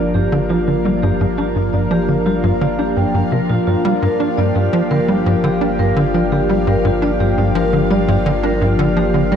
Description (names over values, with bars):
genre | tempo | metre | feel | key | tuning
ambient, sequencer-driven space music | 85 BPM | 4/4 | straight | G minor | A4 = 441 Hz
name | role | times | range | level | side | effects
lush unison pad | sustained chords | 0.0-9.4 s | F3 to Bb4 | -18 LUFS | left 1 dB | chorus
vibraphone with medium hard mallets | arpeggios | 0.0-9.4 s | F4 to G5 | -22 LUFS | right 1 dB | auto-pan, low-pass filter, ping-pong delay
tight sequencer bass | riff | 0.0-9.4 s | G2 to D4 | -17 LUFS | equal | analog chorus, ping-pong delay
round analog bass | bass | 0.0-9.4 s | G1 | -26 LUFS | equal | none
bubbling stepped-filter texture | texture | 0.0-9.4 s | F5 | -28 LUFS | left 3 dB | chorus, built-in reverb
room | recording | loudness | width
moderate plate reverb, RT60 2.9 s | dark, warm production | -14 LUFS | side -8 dB against mid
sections
0.0-9.4 A section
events
fade-in on synth texture 0.0-9.4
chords
0.0 Gm7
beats
0.49 | 1.20 1.91 2.61 3.32 | 4.03 4.73 5.44 6.14 | 6.85 7.55 8.26 8.97